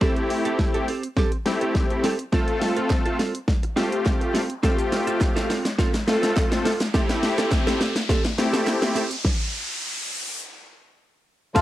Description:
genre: dance-pop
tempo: 104 BPM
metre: 4/4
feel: straight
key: unclear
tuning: A4 = 440 Hz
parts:
  - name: big bright polysynth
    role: accompaniment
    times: 0.0-11.6 s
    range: F3 to A4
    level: -24 LUFS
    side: left 2 dB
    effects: chorus, sidechain pumping, cassette tape
  - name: direct-recorded clean electric guitar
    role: riff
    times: 0.0-11.6 s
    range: C4 to A4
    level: -27 LUFS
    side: right 4 dB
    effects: analog chorus, cassette tape
  - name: pop drum kit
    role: drums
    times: 0.0-11.6 s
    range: crash cymbal, hi-hat, kick drum, shaker, snare drum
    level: -23 LUFS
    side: equal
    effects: cassette tape
  - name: riser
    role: sound effects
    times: 4.5-10.4 s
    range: none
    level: -32 LUFS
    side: equal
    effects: none
  - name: group handclap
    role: percussion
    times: 2.9-8.8 s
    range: none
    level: -35 LUFS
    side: right 6 dB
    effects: none
  - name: airy dreamy lead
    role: melody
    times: 11.6 s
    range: F5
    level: -22 LUFS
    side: left 6 dB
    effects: chorus, sidechain pumping, cassette tape
  - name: mellow accordion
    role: sustained chords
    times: 11.6 s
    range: C3 to A4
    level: -19 LUFS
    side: left 1 dB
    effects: sidechain pumping, cassette tape
room: moderate studio reverb, RT60 0.6 s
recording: home recording on cassette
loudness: -20 LUFS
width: side -14 dB against mid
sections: 0.0-11.6 A section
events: build-up 0.0-11.6; drum fill 0.0-9.2; riser 4.5-11.6; stop 9.2-11.6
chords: 0.0 Am7; 2.3 F; 6.9 Am7

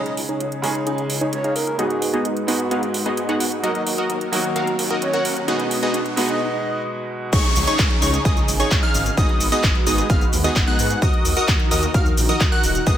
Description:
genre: EDM, festival progressive house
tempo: 130 BPM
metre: 4/4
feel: straight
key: Eb minor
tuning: A4 = 440 Hz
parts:
  - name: bright baby grand piano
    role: accompaniment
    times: 0.0-7.4 s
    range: Ab2 to Ab4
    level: -26 LUFS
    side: right 1 dB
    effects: sidechain pumping
  - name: lush unison pad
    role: sustained chords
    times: 0.0-13.0 s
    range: Db3 to Cb5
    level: -28 LUFS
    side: equal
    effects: chorus, phaser, sidechain pumping
  - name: supersaw stab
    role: riff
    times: 0.0-13.0 s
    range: Cb4 to Gb5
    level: -24 LUFS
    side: equal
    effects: cassette tape, sidechain pumping, low-pass filter, dub echo
  - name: wide detuned saw bass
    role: bass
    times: 0.0-12.9 s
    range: Eb1 to Ab2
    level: -28 LUFS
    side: equal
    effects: chorus, sidechain pumping, high-pass filter
  - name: riser and downlifter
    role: sound effects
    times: 0.0-11.0 s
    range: none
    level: -32 LUFS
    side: equal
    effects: none
  - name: breathy flute-like synth lead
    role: melody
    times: 0.1-6.8 s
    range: Ab4 to Eb5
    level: -28 LUFS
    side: equal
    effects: chorus, dub echo
  - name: house drum kit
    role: drums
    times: 0.1-13.0 s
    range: cabasa, crash cymbal, handclaps, hi-hat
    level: -25 LUFS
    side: right 1 dB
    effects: studio ambience
  - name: plucky unison lead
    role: arpeggios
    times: 7.3-13.0 s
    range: Db6 to Gb6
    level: -25 LUFS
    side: equal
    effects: sidechain pumping, dub echo
  - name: electronic kick drum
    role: drums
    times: 7.3-13.0 s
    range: none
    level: -19 LUFS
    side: equal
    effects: overdrive, studio ambience
room: light reverb, digital ambience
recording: none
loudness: -17 LUFS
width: side -10 dB against mid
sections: 0.0-7.3 A section; 7.3-13.0 B section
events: build-up 0.0-7.3; filter sweep on supersaw synth 0.0-7.3; break 6.4-7.3; drop 7.3-13.0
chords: 0.0 Dbsus2; 1.8 Abm7; 3.6 Ebm; 5.5 B6; 7.3 Dbsus2; 9.2 Abm7; 11.0 Ebm

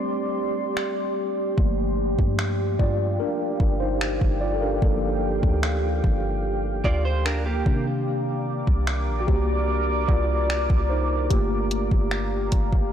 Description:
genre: contemporary R&B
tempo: 74 BPM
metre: 4/4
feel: straight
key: G minor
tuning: A4 = 440 Hz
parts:
  - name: mellow tine electric piano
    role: accompaniment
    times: 0.0-12.9 s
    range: Eb3 to D5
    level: -28 LUFS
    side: left 1 dB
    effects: medium stereo tremolo
  - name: deep dark ambient pad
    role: sustained chords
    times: 0.0-12.9 s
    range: G4 to D6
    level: -28 LUFS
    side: right 1 dB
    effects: chorus, built-in reverb
  - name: smooth R&B drum kit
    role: drums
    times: 0.8-12.9 s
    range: finger snaps, hi-hat, kick drum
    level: -24 LUFS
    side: equal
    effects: soft clipping on snare
  - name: soft 808-style bass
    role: bass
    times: 1.6-12.9 s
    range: G1 to C3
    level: -26 LUFS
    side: equal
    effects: none
  - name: direct-recorded clean electric guitar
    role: arpeggios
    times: 6.8-7.8 s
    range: Bb3 to D5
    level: -29 LUFS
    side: right 4 dB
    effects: lush chorus, ping-pong delay
room: digital ambience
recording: blown-out, overdriven recording, overdrive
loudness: -21 LUFS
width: side -9 dB against mid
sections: 0.0-12.9 A section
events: break 0.0-1.6; tine electric piano solo 0.0-12.9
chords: 0.0 D7sus4; 1.6 Gm7; 7.7 Cm9; 11.3 Gm7

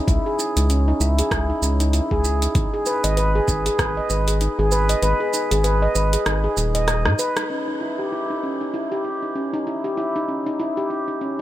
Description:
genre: organic downtempo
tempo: 97 BPM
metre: 4/4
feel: swing 58% on 16ths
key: Eb phrygian dominant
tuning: A4 = 440 Hz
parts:
  - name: handpan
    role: arpeggios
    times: 0.0-11.4 s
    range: Db4 to Eb5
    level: -22 LUFS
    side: equal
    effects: low-pass filter, tape echo
  - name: round analog bass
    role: bass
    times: 0.1-7.1 s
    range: Eb1 to Ab2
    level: -20 LUFS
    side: equal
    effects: tube saturation, sidechain pumping
  - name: deep house drum kit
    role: drums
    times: 0.1-7.5 s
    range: hi-hat, rim click, shaker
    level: -27 LUFS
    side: right 1 dB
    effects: low-pass filter on perc, low-pass filter on hats, low-pass filter on snare, low-pass filter on room
  - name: electronic kick drum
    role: drums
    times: 0.1-3.9 s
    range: none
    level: -23 LUFS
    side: equal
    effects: none
room: light reverb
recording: none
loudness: -19 LUFS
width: side -13 dB against mid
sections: 0.0-7.5 A section; 7.5-11.4 B section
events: kick drops out 5.0-7.5; drum fill 6.9-7.5; band accent 7.3-7.7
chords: 0.0 Dbmadd9; 2.6 Abm; 7.5 Eb7b9

